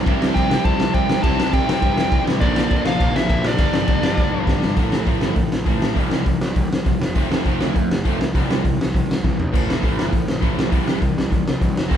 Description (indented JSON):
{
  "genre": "punk rock",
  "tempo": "202 BPM",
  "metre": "4/4",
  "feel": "straight",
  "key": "C major",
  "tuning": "A4 = 444 Hz",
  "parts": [
    { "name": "distorted electric guitar", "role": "riff", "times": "0.0-12.0 s", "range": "G2 to E4", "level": "-26 LUFS", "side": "left 6 dB", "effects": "distortion" },
    { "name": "overdriven semi-hollow guitar", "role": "riff", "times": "0.0-12.0 s", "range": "G2 to E4", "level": "-26 LUFS", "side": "right 7 dB", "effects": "none" },
    { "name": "sludgy distorted guitar", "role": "riff", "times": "0.0-4.8 s", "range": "G2 to C4", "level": "-29 LUFS", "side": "left 1 dB", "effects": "none" },
    { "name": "fuzz picked electric bass", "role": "bass", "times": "0.0-12.0 s", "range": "F1 to C3", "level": "-27 LUFS", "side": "equal", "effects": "overdrive" },
    { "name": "raw garage drum kit", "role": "drums", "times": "0.1-12.0 s", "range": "crash cymbal, hi-hat, kick drum, snare drum, toms", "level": "-19 LUFS", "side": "equal", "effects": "none" },
    { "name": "dark smooth lead guitar", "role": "melody", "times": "0.3-4.5 s", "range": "D5 to A5", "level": "-24 LUFS", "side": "right 1 dB", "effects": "overdrive" }
  ],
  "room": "light reverb",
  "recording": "band playing live in one room",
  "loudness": "-17 LUFS",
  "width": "side -9 dB against mid",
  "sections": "0.0-4.8 A section; 4.8-12.0 B section",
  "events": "drum fill 4.2-4.8, 9.2",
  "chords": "0.1 C; 2.4 Bb; 3.6 G; 4.8 A5; 6.0 C; 7.0 F; 8.2 C; 9.5 A5; 10.7 C"
}